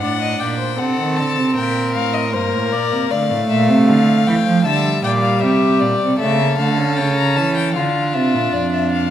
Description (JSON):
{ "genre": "classical, baroque-style fugue for string quartet", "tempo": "78 BPM", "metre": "4/4", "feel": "straight", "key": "unclear", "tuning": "A4 = 440 Hz", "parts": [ { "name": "rich violin", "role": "melody", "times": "0.0-9.1 s", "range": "Bb4 to Bb5", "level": "-22 LUFS", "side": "left 9 dB", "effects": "none" }, { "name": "warm violin", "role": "second line", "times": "0.0-9.1 s", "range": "F4 to F5", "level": "-22 LUFS", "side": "left 2 dB", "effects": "none" }, { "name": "warm viola", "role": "accompaniment", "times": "0.0-9.1 s", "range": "G3 to D4", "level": "-20 LUFS", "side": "right 2 dB", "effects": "none" }, { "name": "rich cello", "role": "bass", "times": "0.0-9.1 s", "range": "F2 to F3", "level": "-19 LUFS", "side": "right 3 dB", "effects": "none" } ], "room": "wet recital hall reverb, RT60 1.5 s", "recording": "none", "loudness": "-14 LUFS", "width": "side -10 dB against mid", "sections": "0.0-9.1 A section", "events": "none", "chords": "0.0 D7/A; 1.6 Gm; 3.1 Dm; 4.7 Em7b5; 6.2 A7/C#; 7.8 Dm" }